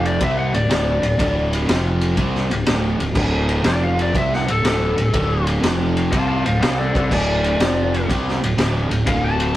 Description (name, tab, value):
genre	blues rock power trio and southern rock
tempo	122 BPM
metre	4/4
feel	swing 68% on 8ths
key	unclear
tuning	A4 = 440 Hz
part	overdriven slide guitar	melody	0.0-9.6 s	A4 to A5	-22 LUFS	left 2 dB	none
part	overdriven semi-hollow guitar	riff	0.0-9.6 s	D2 to C4	-21 LUFS	equal	none
part	fuzz fingered electric bass	bass	0.0-9.5 s	D1 to C2	-22 LUFS	equal	overdrive
part	raw garage drum kit	drums	0.1-9.5 s	crash cymbal, kick drum, ride cymbal, snare drum	-22 LUFS	equal	none
room	moderate studio ambience, RT60 0.5 s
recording	rough rehearsal-room recording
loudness	-16 LUFS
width	side -14 dB against mid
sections	0.0-9.6 A section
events	electric slide guitar solo 0.0-9.6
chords	0.2 D5; 1.7 F5; 2.2 D5; 3.7 F5; 4.2 D5; 5.6 F5; 6.1 D5; 7.6 F5; 8.1 D5